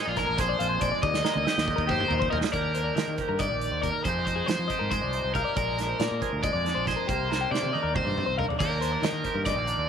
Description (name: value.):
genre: math rock and midwest emo.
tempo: 278 BPM (eighths).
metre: 7/8.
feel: straight.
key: Eb major.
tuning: A4 = 438 Hz.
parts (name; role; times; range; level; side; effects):
overdriven electric guitar; melody; 0.0-9.9 s; F4 to Eb5; -29 LUFS; left 1 dB; slapback echo.
twangy electric guitar; accompaniment; 0.0-9.9 s; Eb2 to Ab4; -33 LUFS; right 13 dB; spring reverb.
twelve-string electric guitar; arpeggios; 0.0-9.9 s; G4 to F5; -32 LUFS; left 12 dB; warbly pitch drift, slapback echo.
growling fingered electric bass; bass; 0.1-9.9 s; Bb1 to F3; -32 LUFS; left 1 dB; overdrive.
loose indie drum kit; drums; 0.2-9.8 s; crash cymbal, hi-hat, kick drum, snare drum, toms; -31 LUFS; right 3 dB; none.
room: light reverb.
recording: 1960s-style stereo with parts hard left and right, lossy compression artefacts.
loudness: -24 LUFS.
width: side -7 dB against mid.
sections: 0.0-2.5 A section; 2.5-9.9 B section.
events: drum fill 1.0-2.5, 7.3-8.6.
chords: 0.0 Bb9; 1.0 Ebmaj7; 4.0 Fm9; 5.6 Bb9; 7.1 Cm9; 8.6 Ebmaj7.